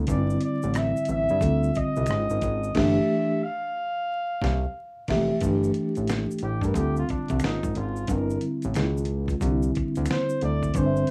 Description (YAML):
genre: R&B, neo-soul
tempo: 90 BPM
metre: 4/4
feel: swing 63% on 16ths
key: unclear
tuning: A4 = 441 Hz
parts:
  - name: mellow tine electric piano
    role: accompaniment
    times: 0.0-11.1 s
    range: D3 to E5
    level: -29 LUFS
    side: equal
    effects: none
  - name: fat analog bass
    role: bass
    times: 0.0-11.0 s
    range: F1 to G2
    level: -29 LUFS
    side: equal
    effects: none
  - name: warm flugelhorn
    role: melody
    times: 0.1-11.1 s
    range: D4 to F5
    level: -31 LUFS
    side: equal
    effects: plate reverb
  - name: dusty soul sampler-style drum kit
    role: drums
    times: 0.1-11.1 s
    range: crash cymbal, hi-hat, kick drum, rim click, snare drum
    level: -33 LUFS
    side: equal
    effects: none
  - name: maracas and finger snaps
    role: percussion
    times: 0.1-11.1 s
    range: none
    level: -47 LUFS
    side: equal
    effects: none
room: moderate small room reverb, RT60 0.6 s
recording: rough home demo mix, vinyl crackle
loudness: -25 LUFS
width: mono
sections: 0.0-5.4 A section; 5.4-11.1 B section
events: band accent 2.7-5.4; flugelhorn solo 5.4-11.1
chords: 0.1 Gsus2; 1.4 Dm7; 2.1 Ab5; 2.7 Gsus2; 3.4 N.C.; 4.1 Csus4; 4.7 Fmaj9; 5.4 Gsus2; 6.7 Dm7; 7.4 Ab5; 8.1 Gm69; 8.7 C#add9; 9.4 Cadd9